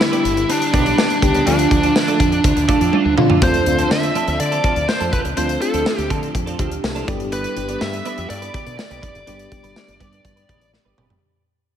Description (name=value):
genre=1980s-style pop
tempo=123 BPM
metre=4/4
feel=straight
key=D dorian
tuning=A4 = 440 Hz
part: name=bluesy overdriven lead guitar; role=melody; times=0.0-10.7 s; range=D4 to E5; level=-20 LUFS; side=right 1 dB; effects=distortion, slapback echo
part: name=FM electric piano with soft pad layer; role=accompaniment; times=0.0-11.2 s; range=D3 to A4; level=-23 LUFS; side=left 1 dB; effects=chorus, slapback echo
part: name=overdriven electric guitar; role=accompaniment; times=0.0-3.9 s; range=D3 to G4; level=-29 LUFS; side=right 1 dB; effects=none
part: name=twelve-string electric guitar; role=riff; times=0.0-11.1 s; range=F3 to B4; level=-26 LUFS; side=right 5 dB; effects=ensemble chorus, slapback echo
part: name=modern studio drum kit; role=drums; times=0.0-11.2 s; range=hi-hat, kick drum, snare drum, tambourine, toms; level=-21 LUFS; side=equal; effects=none
part: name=woody fretless electric bass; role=bass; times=0.2-11.2 s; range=F1 to D3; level=-24 LUFS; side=equal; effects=none
room=moderate lush hall reverb, RT60 1.9 s, small room ambience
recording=big arena sound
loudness=-15 LUFS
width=side -9 dB against mid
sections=0.0-3.4 A section; 3.4-11.2 B section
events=drum fill 2.9-3.4, 10.7-11.2; fade-out 3.4-11.2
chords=0.0 G; 1.5 Dm; 3.4 Dm7; 7.1 G